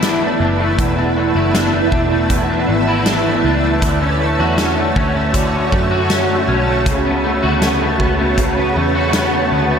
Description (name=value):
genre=dream pop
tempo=79 BPM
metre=4/4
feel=straight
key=unclear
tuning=A4 = 440 Hz
part: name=shimmering ambient pad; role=sustained chords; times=0.0-9.8 s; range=E4 to A5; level=-20 LUFS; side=right 3 dB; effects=chorus, built-in reverb
part: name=electric guitar at the edge of break-up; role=arpeggios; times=0.0-9.8 s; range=E2 to F#4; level=-17 LUFS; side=left 2 dB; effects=ensemble chorus, tape echo
part: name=vintage muted picked electric bass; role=bass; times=0.0-9.8 s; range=E1 to F#2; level=-20 LUFS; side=equal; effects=none
part: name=huge arena drum kit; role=drums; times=0.0-9.3 s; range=hi-hat, kick drum, snare drum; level=-21 LUFS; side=equal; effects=none
room=moderate huge ambient reverb, RT60 9.2 s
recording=none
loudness=-13 LUFS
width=side -7 dB against mid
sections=0.0-9.8 A section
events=none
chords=0.0 E7sus4; 3.8 Dmaj7; 6.9 A69/C#